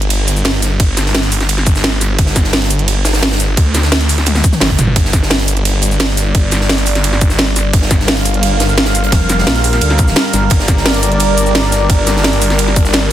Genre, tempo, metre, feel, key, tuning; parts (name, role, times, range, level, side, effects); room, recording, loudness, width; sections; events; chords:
dark technical drum and bass; 173 BPM; 4/4; straight; G minor; A4 = 440 Hz
snarling distorted saw bass; bass; 0.0-13.1 s; G1 to D2; -15 LUFS; equal; distortion, sidechain pumping
drum and bass drum kit; drums; 0.0-13.0 s; hi-hat, ride cymbal, shaker, snare drum, toms; -15 LUFS; right 1 dB; overdrive
crisp fusion drum kit; drums; 0.1-13.0 s; hi-hat, snare drum; -22 LUFS; right 2 dB; high-pass filter on hats, high-pass filter on snare, high-pass filter on room
electronic kick drum; drums; 0.8-12.8 s; -12 LUFS; equal; overdrive
dark analog pad; sustained chords; 5.5-13.1 s; G3 to F5; -18 LUFS; equal; chorus, sidechain pumping
metallic wobble bass; bass; 9.1-10.5 s; F1 to D2; -14 LUFS; equal; chorus
light reverb, digital ambience; dense, heavily limited modern master; -10 LUFS; side -12 dB against mid
0.0-13.1 A section
drum fill 4.3-5.0
0.0 Gm